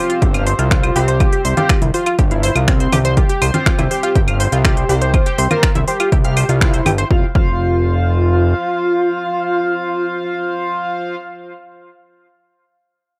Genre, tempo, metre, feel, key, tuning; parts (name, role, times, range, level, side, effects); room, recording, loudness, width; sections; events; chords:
melodic techno; 122 BPM; 4/4; straight; A4 = 440 Hz
unison lead; melody; 0.0-11.2 s; C4 to C5; -23 LUFS; equal; sidechain pumping, analog delay
tight sequenced synth; arpeggios; 0.0-7.5 s; E4 to F6; -24 LUFS; equal; chorus, cassette tape, sidechain pumping, analog delay
sync-sweep polysynth; stabs; 0.0-11.2 s; C4 to F5; -26 LUFS; equal; lush chorus, sidechain pumping, analog delay
techno drum kit; drums; 0.1-7.1 s; claves, congas, finger snaps, hi-hat; -23 LUFS; equal
fat analog bass; bass; 0.2-8.5 s; F1 to C2; -19 LUFS; equal; sidechain pumping
electronic kick drum; drums; 0.2-7.5 s; -18 LUFS; equal
little or no reverb; dry, gritty hardware recording; -16 LUFS; mono
0.0-7.1 A section; 7.1-11.0 B section
drop 0.0-7.1; band accent 6.6
0.0 Csus4; 7.1 F5